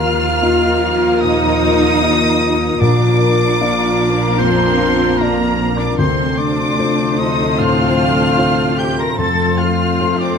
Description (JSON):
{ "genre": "cinematic, emotional film score for orchestra", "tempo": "75 BPM", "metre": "4/4", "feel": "rubato", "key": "Bb major", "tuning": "A4 = 445 Hz", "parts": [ { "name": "rich symphonic violin section", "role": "melody", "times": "0.0-10.4 s", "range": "Bb5 to Bb6", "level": "-22 LUFS", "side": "left 3 dB", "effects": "none" }, { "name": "dark clarinet", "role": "second line", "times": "0.0-10.4 s", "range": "F4 to A4", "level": "-26 LUFS", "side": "left 2 dB", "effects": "none" }, { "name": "mellow large flute ensemble", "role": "second line", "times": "0.0-10.4 s", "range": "Bb5 to C6", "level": "-25 LUFS", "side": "left 2 dB", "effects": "none" }, { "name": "mellow oboe", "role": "second line", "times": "0.0-10.4 s", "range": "Bb4 to Bb5", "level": "-23 LUFS", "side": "right 3 dB", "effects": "none" }, { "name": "rich symphonic violin section", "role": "second line", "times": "0.0-10.4 s", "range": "C4 to C5", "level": "-25 LUFS", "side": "left 1 dB", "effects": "none" }, { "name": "felt-muted upright piano", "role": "accompaniment", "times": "0.0-10.4 s", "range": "Bb1 to Eb5", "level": "-21 LUFS", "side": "left 3 dB", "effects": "none" }, { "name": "rich symphonic viola section", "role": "accompaniment", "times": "0.0-10.4 s", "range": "F3 to Bb3", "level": "-25 LUFS", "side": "right 3 dB", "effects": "none" }, { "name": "dark French horn section", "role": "sustained chords", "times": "0.0-10.4 s", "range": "A3 to F4", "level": "-21 LUFS", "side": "left 2 dB", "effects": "none" }, { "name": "concert harp", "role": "arpeggios", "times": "0.0-10.4 s", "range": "Bb2 to F5", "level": "-23 LUFS", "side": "left 10 dB", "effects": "none" }, { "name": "dark symphonic double bass section", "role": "bass", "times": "0.0-10.4 s", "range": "Bb1 to F2", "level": "-23 LUFS", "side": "right 4 dB", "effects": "none" }, { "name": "rich symphonic cello section", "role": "bass", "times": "0.0-10.4 s", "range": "Bb3 to Bb4", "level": "-22 LUFS", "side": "right 3 dB", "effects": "none" }, { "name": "timpani", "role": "percussion", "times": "2.8-4.0, 9.2-10.4 s", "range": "F2 to Bb2", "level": "-20 LUFS", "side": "right 2 dB", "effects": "none" } ], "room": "moderate scoring stage reverb, RT60 1.5 s", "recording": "none", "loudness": "-12 LUFS", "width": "side -6 dB against mid", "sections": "0.0-10.4 A section", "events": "none", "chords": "0.0 Ebsus2; 2.8 Bb; 6.0 Dm7; 9.2 F" }